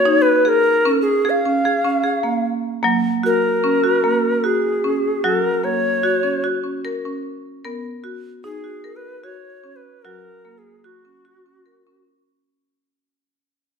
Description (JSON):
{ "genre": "world meditative, meditative tuned percussion", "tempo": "75 BPM", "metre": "3/4", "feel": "straight", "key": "F# major", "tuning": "A4 = 440 Hz", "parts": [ { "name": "bright reedy Native American-style cedar flute", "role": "melody", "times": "0.0-12.1 s", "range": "F#4 to E#5", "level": "-18 LUFS", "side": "left 1 dB", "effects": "none" }, { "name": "marimba with hard mallets", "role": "arpeggios", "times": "0.0-12.4 s", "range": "F#3 to A#4", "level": "-21 LUFS", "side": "right 1 dB", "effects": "none" } ], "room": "wet recital hall reverb, RT60 1.6 s, studio reverb", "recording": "none", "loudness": "-16 LUFS", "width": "side -6 dB against mid", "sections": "0.0-12.5 A section", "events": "fade-out 0.0-12.5", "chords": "0.5 C#; 2.8 F#; 7.6 B5; 10.0 F#" }